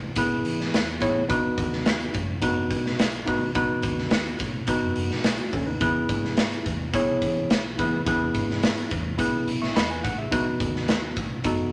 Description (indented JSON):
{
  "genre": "uptempo 1960s-style soul",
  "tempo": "106 BPM",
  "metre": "4/4",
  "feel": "straight",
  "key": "E major",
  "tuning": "A4 = 436 Hz",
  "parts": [
    { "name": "vintage muted fingered electric bass", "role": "bass", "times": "0.0-11.7 s", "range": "F#1 to E3", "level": "-36 LUFS", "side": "equal", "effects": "none" },
    { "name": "barky tine electric piano", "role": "accompaniment", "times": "0.2-11.7 s", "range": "A3 to C#6", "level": "-28 LUFS", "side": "equal", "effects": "none" },
    { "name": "raw garage drum kit", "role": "drums", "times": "0.2-11.6 s", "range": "hi-hat, kick drum, snare drum", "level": "-28 LUFS", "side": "equal", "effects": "none" }
  ],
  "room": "light reverb",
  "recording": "none",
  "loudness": "-25 LUFS",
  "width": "mono",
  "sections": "0.0-11.7 A section",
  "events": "none",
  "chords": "0.0 E; 1.3 B; 5.8 E; 10.3 B",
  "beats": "0.17 0.73 | 1.29 1.86 2.42 2.99 | 3.55 4.12 4.68 5.25 | 5.81 6.38 6.94 7.50 | 8.07 8.63 9.19 9.76 | 10.32 10.88 11.44"
}